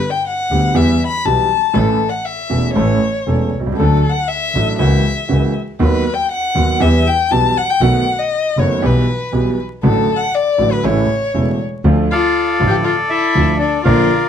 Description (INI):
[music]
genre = tango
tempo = 119 BPM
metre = 4/4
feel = rubato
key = unclear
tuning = A4 = 441 Hz
[part]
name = warm violin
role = second line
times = 0.0-14.3 s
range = D4 to B5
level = -18 LUFS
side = left 5 dB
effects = none
[part]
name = warm grand piano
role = accompaniment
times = 0.5-14.1 s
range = E1 to A4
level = -18 LUFS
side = right 2 dB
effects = none
[part]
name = warm double bass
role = bass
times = 0.5-14.1 s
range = E1 to E2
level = -17 LUFS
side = equal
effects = none
[part]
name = bandoneon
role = melody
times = 12.1-14.3 s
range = A4 to G5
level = -16 LUFS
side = left 1 dB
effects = none
[sound]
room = moderate club reverb, RT60 0.6 s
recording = dark, warm production, vinyl crackle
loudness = -13 LUFS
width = side -8 dB against mid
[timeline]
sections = 0.0-11.9 A section; 11.9-14.3 B section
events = violin solo 0.0-11.9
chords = 0.0 G; 0.8 Em; 1.8 A; 3.8 D; 4.8 F#7/C#; 5.8 B/D#; 6.8 Em; 7.8 B7; 8.8 Em/B; 9.8 D/A; 10.8 A; 11.9 Dm